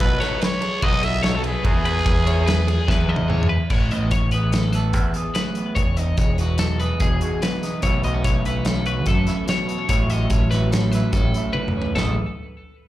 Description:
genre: math rock and midwest emo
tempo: 146 BPM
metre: 5/4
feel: straight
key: A lydian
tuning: A4 = 440 Hz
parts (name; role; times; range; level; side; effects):
- growling trumpet; melody; 0.0-3.3 s; G#4 to E5; -25 LUFS; right 1 dB; slapback echo, tape echo
- twelve-string electric guitar; arpeggios; 0.0-12.1 s; G#4 to D#5; -28 LUFS; left 4 dB; slapback echo, tape echo
- overdriven electric guitar; riff; 0.0-3.5 s; F#3 to A4; -30 LUFS; equal; slapback echo
- growling picked electric bass; bass; 0.0-12.2 s; E1 to B2; -21 LUFS; equal; overdrive
- loose indie drum kit; drums; 0.0-12.1 s; crash cymbal, hi-hat, kick drum, ride cymbal, snare drum, splash cymbal, toms; -23 LUFS; equal; none
- electric guitar through a small old amp; accompaniment; 3.7-12.2 s; E2 to A4; -26 LUFS; right 4 dB; none
room: little or no reverb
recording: live gig heard through the venue's PA, club reverb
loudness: -18 LUFS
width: side -14 dB against mid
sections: 0.0-3.7 A section; 3.7-12.0 B section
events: drum fill 2.9-3.7, 11.5-12.0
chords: 0.0 Bsus2; 1.6 E; 3.7 Amaj9; 5.8 Emaj9; 7.8 B9sus4; 9.9 F#m7/A; 12.0 Asus2

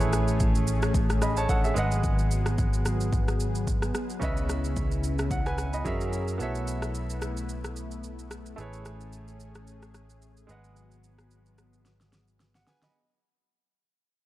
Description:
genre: amapiano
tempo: 110 BPM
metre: 4/4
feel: swing 55% on 16ths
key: unclear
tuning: A4 = 437 Hz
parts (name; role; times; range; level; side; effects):
- clear concert grand piano; accompaniment; 0.0-13.1 s; C#3 to B5; -33 LUFS; right 3 dB; none
- lush unison pad; sustained chords; 0.0-12.9 s; C#3 to A#4; -35 LUFS; left 2 dB; chorus, sidechain pumping
- fingered electric bass; bass; 0.0-12.6 s; G#1 to F#2; -30 LUFS; equal; none
- deep house drum kit; drums; 0.0-12.9 s; kick drum, rim click, shaker, snare drum; -29 LUFS; equal; overdrive
room: little or no reverb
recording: dark, warm production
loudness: -25 LUFS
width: side -15 dB against mid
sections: 0.0-12.9 A section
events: fade-out 0.0-12.9; drum fill 11.9-12.9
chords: 0.0 Amaj7; 1.8 G#m7; 4.2 C#m7; 5.9 F#9; 6.4 B7sus4; 8.6 Amaj7; 10.5 G#m7

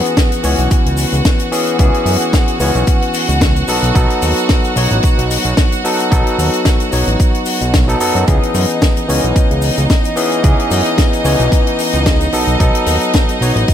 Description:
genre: nu-disco, nu disco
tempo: 111 BPM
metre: 4/4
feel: swing 55% on 16ths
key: C# minor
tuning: A4 = 440 Hz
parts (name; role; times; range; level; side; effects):
- barky tine electric piano; accompaniment; 0.0-13.7 s; E3 to C#5; -17 LUFS; left 1 dB; overdrive, tape echo
- clear studio violin section; sustained chords; 0.0-13.7 s; D#4 to F#5; -20 LUFS; equal; sidechain pumping
- tight funk drum kit; drums; 0.1-13.7 s; hi-hat, snare drum; -20 LUFS; left 3 dB; none
- egg shaker; percussion; 0.1-13.7 s; none; -31 LUFS; left 2 dB; none
- electronic kick drum; drums; 0.2-13.7 s; none; -13 LUFS; equal; none
- fat analog bass; bass; 0.4-13.7 s; A1 to F#2; -16 LUFS; equal; none
room: light reverb, small room ambience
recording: none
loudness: -11 LUFS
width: side -10 dB against mid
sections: 0.0-13.7 A section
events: none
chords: 0.0 C#m7; 3.7 B7; 8.3 C#m7; 12.3 B7

